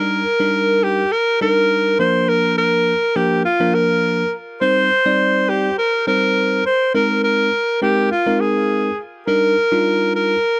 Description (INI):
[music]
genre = pop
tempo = 103 BPM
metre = 4/4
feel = straight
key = Eb major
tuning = A4 = 440 Hz
[part]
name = breathy alto saxophone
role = melody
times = 0.0-10.6 s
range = F4 to C5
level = -18 LUFS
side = equal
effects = cassette tape
[part]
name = bell-like tine electric piano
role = accompaniment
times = 0.0-10.3 s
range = F3 to D5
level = -22 LUFS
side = equal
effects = cassette tape
[sound]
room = moderate booth ambience, RT60 0.3 s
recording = home recording on cassette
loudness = -17 LUFS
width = mono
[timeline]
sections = 0.0-10.6 A section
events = none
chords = 0.0 Ebmaj7; 2.0 Bb; 4.6 Cm; 6.9 Abadd9; 9.3 Ebmaj7